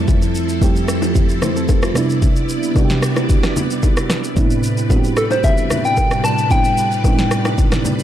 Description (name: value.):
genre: amapiano.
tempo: 112 BPM.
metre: 4/4.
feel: straight.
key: A minor.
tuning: A4 = 441 Hz.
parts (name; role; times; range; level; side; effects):
mellow FM electric piano; accompaniment; 0.0-8.0 s; F2 to C5; -20 LUFS; right 3 dB; chorus.
string machine, violins; sustained chords; 0.0-8.0 s; F2 to D5; -22 LUFS; equal; ensemble chorus, sidechain pumping.
deep house drum kit; drums; 0.1-8.0 s; kick drum, rim click, shaker, snare drum; -17 LUFS; equal; none.
congas and bongos; percussion; 0.1-8.0 s; none; -26 LUFS; left 4 dB; none.
soft struck synth lead; melody; 5.2-7.6 s; A4 to A5; -19 LUFS; left 1 dB; chorus, tape echo.
room: light reverb, digital ambience.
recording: dark, warm production.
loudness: -14 LUFS.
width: side -11 dB against mid.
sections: 0.0-8.0 A section.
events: none.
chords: 0.0 Fmaj7; 2.0 Cmaj9; 4.4 Am11.